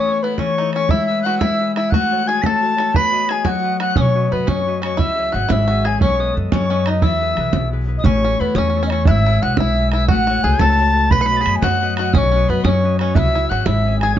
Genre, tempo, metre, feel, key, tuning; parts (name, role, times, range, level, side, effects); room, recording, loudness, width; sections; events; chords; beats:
celtic folk, Celtic jig; 118 BPM (dotted quarters); 6/8; straight; E major; A4 = 440 Hz
baroque flute; melody; 0.0-14.2 s; B4 to B5; -20 LUFS; equal; plate reverb
bluegrass banjo; second line; 0.0-14.2 s; B3 to B4; -28 LUFS; right 4 dB
tin whistle; second line; 0.0-14.2 s; B5 to C#7; -24 LUFS; left 4 dB
Celtic harp; accompaniment; 0.0-14.2 s; B2 to E5; -22 LUFS; left 6 dB
bodhran; percussion; 0.4-14.2 s; -19 LUFS; right 3 dB
upright bass; bass; 4.0-14.2 s; G#1 to B2; -19 LUFS; equal
light reverb; nothing above 7.6 kHz; -14 LUFS; side -11 dB against mid
0.0-8.1 A section; 8.1-14.2 A section
0.0 A; 0.9 E/G#; 1.9 F#m/A; 2.9 B; 5.0 C#m; 6.0 B7; 7.0 E; 8.1 A; 9.1 E/G#; 10.1 F#m/A; 11.1 B; 13.2 C#m
0.39 | 0.90 1.41 | 1.92 2.43 | 2.94 3.46 | 3.97 4.48 | 4.99 5.50 | 6.01 6.52 | 7.03 7.54 | 8.05 8.56 | 9.07 9.58 | 10.09 10.60 | 11.11 11.62 | 12.13 12.64 | 13.15 13.66 | 14.17